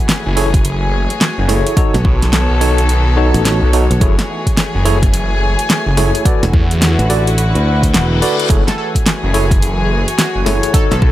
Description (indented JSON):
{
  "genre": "glitch hop",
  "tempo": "107 BPM",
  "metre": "4/4",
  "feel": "swing 62% on 16ths",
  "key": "F# minor",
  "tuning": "A4 = 440 Hz",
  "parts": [
    { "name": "warm chamber string section", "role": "sustained chords", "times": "0.0-11.1 s", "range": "D3 to A4", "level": "-23 LUFS", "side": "left 1 dB", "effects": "sidechain pumping" },
    { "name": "dark studio string section", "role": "texture", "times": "0.0-11.1 s", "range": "B3 to G#5", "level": "-23 LUFS", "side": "left 2 dB", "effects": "sidechain pumping" },
    { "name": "pop drum kit", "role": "drums", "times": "0.1-11.0 s", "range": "hi-hat, snare drum", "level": "-17 LUFS", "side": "equal", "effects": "none" },
    { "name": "phased detuned saw bass", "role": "bass", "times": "0.3-11.1 s", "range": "F#1 to E2", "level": "-15 LUFS", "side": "equal", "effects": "phaser, tube saturation" },
    { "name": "tine electric piano", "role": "stabs", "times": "0.4-10.9 s", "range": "D#4 to D5", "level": "-20 LUFS", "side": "equal", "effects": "overdrive, medium stereo tremolo, vintage 12-bit sampler grit, sidechain pumping, tape echo" },
    { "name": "electronic kick drum", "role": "drums", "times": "0.5-11.1 s", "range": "none", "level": "-14 LUFS", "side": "equal", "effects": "none" },
    { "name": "modern bright fingered electric bass", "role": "bass", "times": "1.9-11.0 s", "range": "E1 to D2", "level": "-14 LUFS", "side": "equal", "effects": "none" },
    { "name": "reverse cymbal", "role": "sound effects", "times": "7.7-8.5 s", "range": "none", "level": "-24 LUFS", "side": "left 6 dB", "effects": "none" },
    { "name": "plucky unison lead", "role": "melody", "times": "8.7-11.1 s", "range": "F#4 to A4", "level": "-24 LUFS", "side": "equal", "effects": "wide subtle chorus, tape echo" }
  ],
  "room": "little or no reverb",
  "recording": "none",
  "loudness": "-11 LUFS",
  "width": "side -14 dB against mid",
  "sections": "0.0-11.1 A section",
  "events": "reverse cymbal 7.7-8.5",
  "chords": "0.0 F#m9; 1.8 B7; 4.0 F#m9; 6.3 E9sus4; 8.5 F#m9",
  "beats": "0.09 0.65 1.21 | 1.77 2.33 2.89 3.45 | 4.01 4.57 5.13 5.70 | 6.25 6.82 7.38 7.94 | 8.50 9.06 9.62 10.18 | 10.74"
}